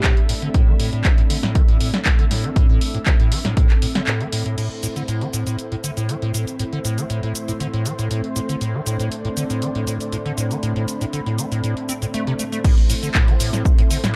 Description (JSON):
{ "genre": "acid house", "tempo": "119 BPM", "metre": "4/4", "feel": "straight", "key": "A minor", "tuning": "A4 = 440 Hz", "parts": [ { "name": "string machine, full ensemble", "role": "sustained chords", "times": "0.0-14.2 s", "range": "A3 to E5", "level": "-32 LUFS", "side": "equal", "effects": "ensemble chorus, sidechain pumping" }, { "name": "acid bass, square", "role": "riff", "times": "0.0-14.2 s", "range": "A2 to C4", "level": "-26 LUFS", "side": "equal", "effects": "tube saturation, lush chorus, tape echo" }, { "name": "electronic kick drum", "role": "drums", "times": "0.0-3.7, 12.6-13.8 s", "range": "none", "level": "-18 LUFS", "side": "equal", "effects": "none" }, { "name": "punchy analog drum machine", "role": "drums", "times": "0.0-14.1 s", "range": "crash cymbal, handclaps, hi-hat, shaker, snare drum", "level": "-28 LUFS", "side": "equal", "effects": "none" }, { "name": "ethereal airy pad", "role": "texture", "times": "0.0-14.2 s", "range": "C4 to C6", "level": "-33 LUFS", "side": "equal", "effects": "ensemble chorus, built-in reverb, sidechain pumping" } ], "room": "little or no reverb", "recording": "dark, warm production", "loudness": "-20 LUFS", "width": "mono", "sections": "0.0-4.6 A section; 4.6-12.6 B section; 12.6-14.2 C section", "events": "break 4.1-4.6; drop 12.6-14.2", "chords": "0.0 Am" }